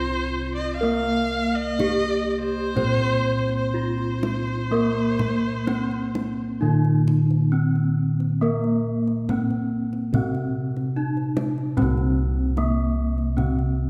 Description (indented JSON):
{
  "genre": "Javanese gamelan",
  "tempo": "62-75 BPM",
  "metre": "4/4",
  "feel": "straight",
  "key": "C slendro",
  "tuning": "A4 = 441 Hz",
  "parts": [
    { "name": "gamelan-type bronze metallophone", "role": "melody", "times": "0.0-13.9 s", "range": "Bb3-25c to C5", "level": "-29 LUFS", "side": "equal", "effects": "none" },
    { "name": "bright erhu", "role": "second line", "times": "0.0-6.7 s", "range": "C5 to F5", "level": "-31 LUFS", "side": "equal", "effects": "none" },
    { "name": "gamelan-type bronze metallophone", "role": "accompaniment", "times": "0.0-13.9 s", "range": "C3 to C4", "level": "-28 LUFS", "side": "equal", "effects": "none" },
    { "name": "gamelan-type bossed gongs", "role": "bass", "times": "0.0-13.9 s", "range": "C2 to Bb4-25c", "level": "-28 LUFS", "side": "equal", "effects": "none" },
    { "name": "kendang", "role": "percussion", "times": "0.1-13.7 s", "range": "none", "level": "-33 LUFS", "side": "equal", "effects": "none" }
  ],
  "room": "wet scoring stage reverb, RT60 2.1 s",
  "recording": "heard from further back in the room",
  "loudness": "-23 LUFS",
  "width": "mono",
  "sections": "0.0-11.8 A section; 11.8-13.9 B section",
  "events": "none",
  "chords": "none"
}